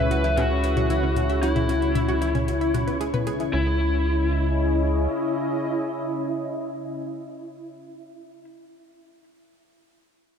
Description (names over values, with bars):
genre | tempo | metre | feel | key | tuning
ambient, sequencer-driven space music | 114 BPM | 4/4 | straight | C# minor | A4 = 442 Hz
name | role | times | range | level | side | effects
lead guitar through a small cranked amp | melody | 0.0-8.4 s | E4 to B4 | -27 LUFS | left 1 dB | overdrive, analog delay
sweeping resonant pad | sustained chords | 0.0-8.5 s | C#3 to E5 | -28 LUFS | left 1 dB | chorus
analog pluck | riff | 0.0-3.8 s | C#4 to E5 | -31 LUFS | right 1 dB | chorus, analog delay
round analog bass | bass | 0.0-5.1 s | C#2 | -25 LUFS | right 1 dB | none
bubbling stepped-filter texture | texture | 0.0-3.5 s | C#5 to C#6 | -38 LUFS | equal | chorus, built-in reverb
booming analog drum machine | percussion | 0.1-3.5 s | hi-hat, toms | -30 LUFS | left 4 dB | analog delay
room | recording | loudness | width
wet plate reverb, RT60 3.2 s | echo-heavy mix | -21 LUFS | side -7 dB against mid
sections
0.0-3.5 A section; 3.5-7.7 B section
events
none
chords
0.0 C#m; 3.5 C#madd9